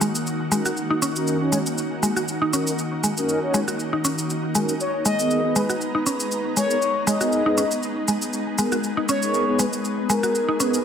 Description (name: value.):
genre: afro house.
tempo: 119 BPM.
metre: 4/4.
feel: swing 54% on 16ths.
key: G# minor.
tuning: A4 = 442 Hz.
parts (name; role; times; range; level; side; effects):
ethereal airy pad; sustained chords; 0.0-10.8 s; D#3 to A#5; -27 LUFS; left 1 dB; ensemble chorus, built-in reverb.
mallet-like synth pluck; arpeggios; 0.0-10.7 s; G#3 to F#4; -25 LUFS; equal; chorus, dub echo.
cabasa; drums; 0.0-10.8 s; none; -28 LUFS; equal; studio reverb.
mellow synth brass; stabs; 0.5-10.8 s; B3 to C#5; -27 LUFS; right 2 dB; chorus, dub echo.
expressive synth lead; melody; 4.8-10.8 s; A#4 to D#5; -24 LUFS; left 2 dB; lush chorus, dub echo.
room: moderate lush hall reverb, RT60 1.6 s.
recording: none.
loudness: -20 LUFS.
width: side -8 dB against mid.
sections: 0.0-10.8 A section.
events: filter sweep on synth arpeggio sound 0.0-10.8.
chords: 0.0 D#m7; 4.8 G#madd9.